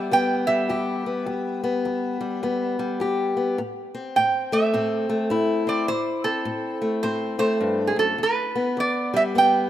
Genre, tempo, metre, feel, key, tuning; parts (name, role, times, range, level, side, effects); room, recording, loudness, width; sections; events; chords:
acoustic country blues, solo or duo; 104 BPM; 4/4; swing 61% on 8ths; E minor; A4 = 440 Hz
fingerpicked acoustic archtop guitar; accompaniment; 0.0-9.7 s; E2 to G4; -23 LUFS; left 2 dB
lap resonator guitar; melody; 0.1-9.7 s; G#4 to G5; -22 LUFS; right 3 dB
light reverb, studio reverb; rough home demo mix; -21 LUFS; side -12 dB against mid
0.0-9.7 A section
0.0 Em; 3.6 Am; 8.2 Em